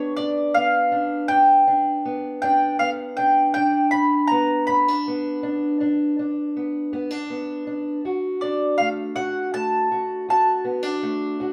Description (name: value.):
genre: acoustic country blues, solo or duo.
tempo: 53 BPM (dotted quarters).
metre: 12/8.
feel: straight.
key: G major.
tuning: A4 = 440 Hz.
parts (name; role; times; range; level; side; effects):
mandolin; melody; 0.0-10.6 s; C#5 to B5; -22 LUFS; equal; none.
fingerpicked steel-string acoustic guitar; accompaniment; 0.0-11.5 s; D2 to G4; -26 LUFS; equal; none.
room: moderate large studio reverb, RT60 1.2 s.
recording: band playing live in one room.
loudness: -22 LUFS.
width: mono.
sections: 0.0-11.5 A section.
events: none.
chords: 0.0 G; 8.0 D.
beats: 0.17 1.30 2.42 | 3.55 4.67 5.79 6.92 | 8.04 9.16 10.28 11.40.